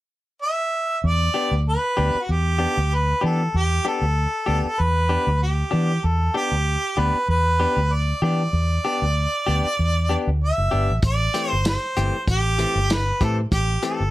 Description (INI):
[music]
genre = straight-eighth soul blues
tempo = 96 BPM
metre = 4/4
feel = straight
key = E minor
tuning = A4 = 440 Hz
[part]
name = warm harmonica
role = melody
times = 0.4-14.1 s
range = F#4 to E5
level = -23 LUFS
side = right 1 dB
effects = none
[part]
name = vintage muted fingered electric bass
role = bass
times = 1.0-14.1 s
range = F#1 to E3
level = -21 LUFS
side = equal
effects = none
[part]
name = direct-recorded clean electric guitar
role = stabs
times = 1.3-14.0 s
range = E3 to G4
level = -26 LUFS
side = left 4 dB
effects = wide subtle chorus
[part]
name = warm soul drum kit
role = drums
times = 11.0-14.0 s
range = hi-hat, kick drum, snare drum, tambourine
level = -23 LUFS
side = equal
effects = none
[sound]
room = light reverb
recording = none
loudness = -19 LUFS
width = side -16 dB against mid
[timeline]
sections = 0.0-1.0 A section; 1.0-14.1 B section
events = none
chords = 0.0 N.C.; 1.0 Em7; 11.0 Am7